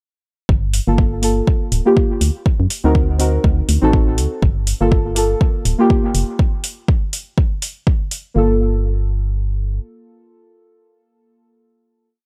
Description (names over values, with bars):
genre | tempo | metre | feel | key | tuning
deep house | 122 BPM | 4/4 | swing 57% on 16ths | G minor | A4 = 440 Hz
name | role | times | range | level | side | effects
organ-like FM bass | bass | 0.5-9.8 s | D1 to F#2 | -20 LUFS | equal | sidechain pumping
electronic kick drum | drums | 0.5-8.0 s | none | -18 LUFS | equal | overdrive, small room reverb
electronic hi-hat | drums | 0.7-8.2 s | none | -26 LUFS | equal | overdrive, small room reverb
deep mellow chord stab | stabs | 0.9-12.1 s | Bb3 to Bb4 | -20 LUFS | equal | chorus, tape echo
room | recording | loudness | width
little or no reverb | dry, gritty hardware recording | -17 LUFS | mono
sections
0.5-8.4 groove; 8.4-12.3 final chord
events
none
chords
0.5 Gm9; 2.2 D7b9b13; 4.4 Gm9; 6.4 N.C.; 8.4 Gm9